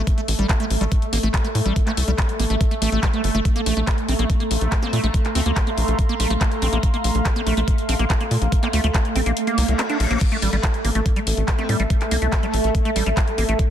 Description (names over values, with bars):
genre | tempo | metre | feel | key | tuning
psychedelic trance | 142 BPM | 4/4 | straight | unclear | A4 = 440 Hz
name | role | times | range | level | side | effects
bubbling stepped-filter texture | sustained chords | 0.0-13.7 s | A3 | -27 LUFS | right 1 dB | chorus, built-in reverb, sidechain pumping
tight sequencer bass | bass | 0.0-13.5 s | G1 to Bb2 | -21 LUFS | equal | none
drum and bass drum kit | drums | 0.1-13.7 s | crash cymbal, handclaps, hi-hat | -27 LUFS | left 1 dB | none
electronic kick drum | drums | 0.1-13.7 s | none | -20 LUFS | equal | none
liquid acid bass | riff | 0.2-13.5 s | G3 to D4 | -26 LUFS | right 1 dB | chorus, auto-pan, sidechain pumping, dub echo
warbly tape-like pad | texture | 4.2-13.7 s | A4 to C6 | -29 LUFS | right 1 dB | chorus, built-in reverb, sidechain pumping
metallic wobble bass | second line | 4.8-5.7, 11.6-12.7 s | A3 to C4 | -37 LUFS | left 3 dB | none
reverse cymbal | sound effects | 9.6-10.2 s | none | -31 LUFS | left 5 dB | none
room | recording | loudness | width
little or no reverb | dense, heavily limited modern master | -18 LUFS | side -10 dB against mid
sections
0.0-13.7 A section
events
kick drops out 9.4-10.2; reverse cymbal 9.6-10.2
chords
0.0 N.C.; 3.5 Bb5; 10.2 A5